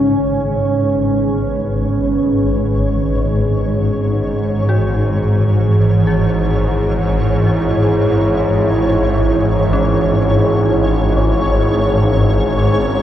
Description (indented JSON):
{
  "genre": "dark ambient drone",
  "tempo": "free time",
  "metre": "none",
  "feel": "none",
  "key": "unclear",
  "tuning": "A4 = 440 Hz",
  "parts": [
    { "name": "deep dark ambient pad", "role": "sustained chords", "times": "0.0-13.0 s", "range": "E3 to C#5", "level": "-17 LUFS", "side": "right 1 dB", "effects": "chorus, built-in reverb" },
    { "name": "dark detuned synth bell", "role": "arpeggios", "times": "0.0-13.0 s", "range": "C#4 to G#4", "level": "-28 LUFS", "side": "left 3 dB", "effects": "chorus, diffuse ambient delay" },
    { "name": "swarming drone", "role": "drone", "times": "0.0-13.0 s", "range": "G#1 to G#2", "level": "-15 LUFS", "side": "equal", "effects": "built-in reverb" },
    { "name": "flickering grainy texture", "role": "texture", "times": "0.0-13.0 s", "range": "C#5", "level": "-24 LUFS", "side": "left 1 dB", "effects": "built-in reverb" }
  ],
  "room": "moderate plate reverb, RT60 2.7 s",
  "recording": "dreamy mix soaked in reverb, cassette tape",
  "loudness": "-13 LUFS",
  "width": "side -11 dB against mid",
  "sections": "0.0-13.0 A section",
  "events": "fade-in on synth texture 0.0-13.0; fade-in on synth bell 0.0-13.0; fade-out on ambient pad 0.0-13.0",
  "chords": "0.0 G#m; 3.8 E; 11.2 N.C."
}